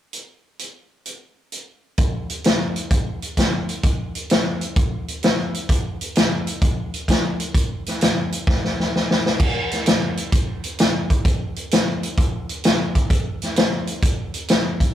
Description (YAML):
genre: blues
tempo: 130 BPM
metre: 4/4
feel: swing 68% on 8ths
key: none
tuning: none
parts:
  - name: vintage drum kit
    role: drums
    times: 0.1-14.9 s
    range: crash cymbal, hi-hat, kick drum, snare drum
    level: -18 LUFS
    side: equal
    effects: none
room: moderate studio reverb, RT60 0.5 s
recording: rough rehearsal-room recording, warm saturation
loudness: -18 LUFS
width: side -11 dB against mid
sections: 0.1-2.0 A section; 2.0-9.4 B section; 9.4-14.9 C section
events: drum fill 8.5-9.4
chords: none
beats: | 0.13 0.59 1.05 1.52 | 1.98 2.44 2.91 3.37 | 3.83 4.30 4.76 5.23 | 5.69 6.15 6.62 7.08 | 7.54 8.01 8.47 8.93 | 9.40 9.86 10.32 10.79 | 11.25 11.71 12.17 12.64 | 13.10 13.56 14.03 14.49